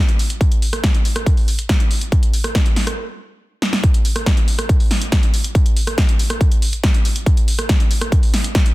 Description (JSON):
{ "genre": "techno", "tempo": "140 BPM", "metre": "4/4", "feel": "straight", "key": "none", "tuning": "none", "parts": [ { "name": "punchy analog drum machine", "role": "drums", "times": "0.1-8.7 s", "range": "hi-hat, rim click, snare drum", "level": "-21 LUFS", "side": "equal", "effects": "overdrive, sidechain pumping on hats" }, { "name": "electronic kick drum", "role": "drums", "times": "0.4-8.6 s", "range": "none", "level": "-15 LUFS", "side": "equal", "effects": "distortion, overdrive" } ], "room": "little or no reverb", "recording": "dense, heavily limited modern master", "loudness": "-14 LUFS", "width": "side -19 dB against mid", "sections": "0.0-3.8 A section; 3.8-8.7 B section", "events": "stop 3.0-3.8; drum fill 3.6; drop 3.8-8.7", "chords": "none" }